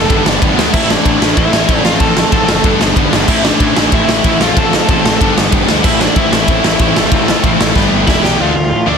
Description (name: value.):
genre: punk rock.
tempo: 188 BPM.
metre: 4/4.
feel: straight.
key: A minor.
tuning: A4 = 442 Hz.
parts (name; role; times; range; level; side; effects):
crunchy overdriven guitar; melody; 0.0-9.0 s; D4 to A5; -18 LUFS; equal; none.
fuzz guitar; riff; 0.0-8.4 s; E2 to A3; -20 LUFS; left 1 dB; distortion.
tight distorted guitar; riff; 0.0-9.0 s; G2 to G4; -17 LUFS; left 16 dB; distortion.
tight distorted guitar; riff; 0.0-9.0 s; G2 to F4; -18 LUFS; right 14 dB; distortion.
fuzz picked electric bass; bass; 0.0-9.0 s; E1 to A2; -19 LUFS; equal; overdrive.
raw garage drum kit; drums; 0.1-8.3 s; crash cymbal, kick drum, ride cymbal, snare drum; -13 LUFS; equal; none.
room: little or no reverb.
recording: dense, heavily limited modern master.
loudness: -9 LUFS.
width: side -6 dB against mid.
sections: 0.0-8.4 A section.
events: drum fill 7.8-8.4.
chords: 0.1 G; 0.7 Am; 1.8 F/A; 2.6 G; 3.3 Am; 4.4 F/A; 5.2 G; 5.8 Am; 7.0 F/A; 7.8 G; 8.1 Em; 8.4 Dm.